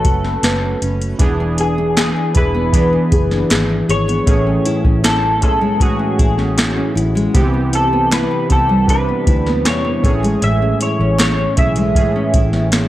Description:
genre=indie pop, bedroom pop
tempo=78 BPM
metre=4/4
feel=straight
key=A major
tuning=A4 = 439 Hz
part: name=electric guitar through a small old amp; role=melody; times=0.0-12.9 s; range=G#4 to E5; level=-20 LUFS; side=left 1 dB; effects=analog chorus, analog delay
part: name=nylon-string guitar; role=accompaniment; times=0.0-12.9 s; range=A2 to B4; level=-19 LUFS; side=left 1 dB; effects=wide subtle chorus, warbly pitch drift
part: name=warm analog keys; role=accompaniment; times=0.0-12.9 s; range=D3 to B4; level=-22 LUFS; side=right 3 dB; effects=chorus, cassette tape
part: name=vintage muted fingered electric bass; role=bass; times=0.0-12.9 s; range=E1 to E2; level=-20 LUFS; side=equal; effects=tube saturation
part: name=soft vintage rhythm box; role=drums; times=0.0-12.9 s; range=hi-hat, kick drum, snare drum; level=-16 LUFS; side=equal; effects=overdrive
part: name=group handclap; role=percussion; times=2.0-12.9 s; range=none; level=-29 LUFS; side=right 2 dB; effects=none
room=light reverb, digital ambience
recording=dry, gritty hardware recording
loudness=-13 LUFS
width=side -14 dB against mid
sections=0.0-1.2 A section; 1.2-12.9 B section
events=none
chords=0.0 A69; 1.2 E7; 4.3 Amaj7; 7.3 Cmaj7; 10.0 Amaj7

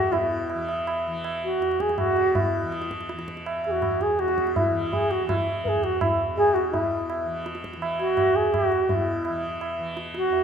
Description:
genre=indian classical, Hindustani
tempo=165 BPM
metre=3/4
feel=straight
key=E raga hamsadhwani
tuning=A4 = 444 Hz
part: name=mellow bansuri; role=melody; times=0.0-10.4 s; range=E4 to B4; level=-23 LUFS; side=right 1 dB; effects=none
part: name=tanpura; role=drone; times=0.0-10.4 s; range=E2 to E3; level=-33 LUFS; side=equal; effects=none
part: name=tabla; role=percussion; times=0.1-10.4 s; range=none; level=-27 LUFS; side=right 1 dB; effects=none
room=moderate concert hall reverb, RT60 1.9 s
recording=minimal, uncompressed stereo recording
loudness=-22 LUFS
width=side -7 dB against mid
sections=0.0-6.7 A section; 6.7-10.4 A section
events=speeding up 0.0-10.4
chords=none

